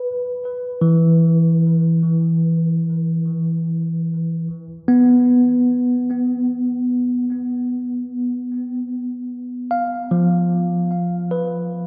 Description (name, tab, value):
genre	ambient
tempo	free time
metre	none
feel	none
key	unclear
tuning	A4 = 440 Hz
part	tine electric piano	solo	0.0-11.9 s	E3 to F5	-19 LUFS	equal	tape echo
room	wet lush hall reverb, RT60 2.5 s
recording	none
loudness	-19 LUFS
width	mono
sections	0.0-11.9 A section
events	fade-out 8.8-11.9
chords	0.0 E5; 4.5 N.C.